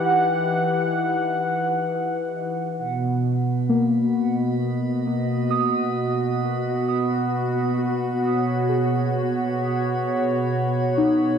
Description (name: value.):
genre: ambient.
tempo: 66 BPM.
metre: 3/4.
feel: straight.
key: B major.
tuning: A4 = 440 Hz.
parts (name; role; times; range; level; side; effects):
warm analog pad; sustained chords; 0.0-11.4 s; B2 to F#5; -22 LUFS; equal; chorus.
muted felt-like synth keys; arpeggios; 0.0-11.4 s; A#3 to D#6; -25 LUFS; left 1 dB; chorus, phaser, dub echo.
drifting glass-harmonics texture; texture; 3.7-11.4 s; B5; -41 LUFS; right 1 dB; chorus, built-in reverb.
room: wet echo chamber reverb, RT60 2.5 s.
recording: echo-heavy mix, nothing above 10.8 kHz.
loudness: -20 LUFS.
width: side -7 dB against mid.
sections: 0.0-2.8 A section; 2.8-11.4 B section.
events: fade-in on synth texture 2.8-11.4.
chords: 0.0 Emadd9; 2.8 B.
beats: | 0.05 0.96 1.87 | 2.78 3.69 4.60 | 5.51 6.42 7.32 | 8.23 9.14 10.05 | 10.96.